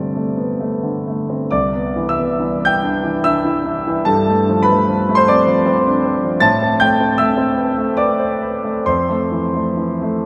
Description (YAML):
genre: classical, impressionist solo piano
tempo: 64-80 BPM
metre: 3/4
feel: rubato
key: C major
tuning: A4 = 441 Hz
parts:
  - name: clear concert grand piano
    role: solo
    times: 0.0-10.3 s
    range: C2 to A6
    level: -17 LUFS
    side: equal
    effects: none
room: wet cathedral reverb, RT60 5.2 s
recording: in a vast, echoing space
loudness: -17 LUFS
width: mono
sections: 0.0-1.5 A section; 1.5-10.3 B section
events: none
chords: 0.0 Gsus24; 1.5 Cmaj9; 4.1 G9sus4; 6.4 Amadd9; 8.9 Fmaj7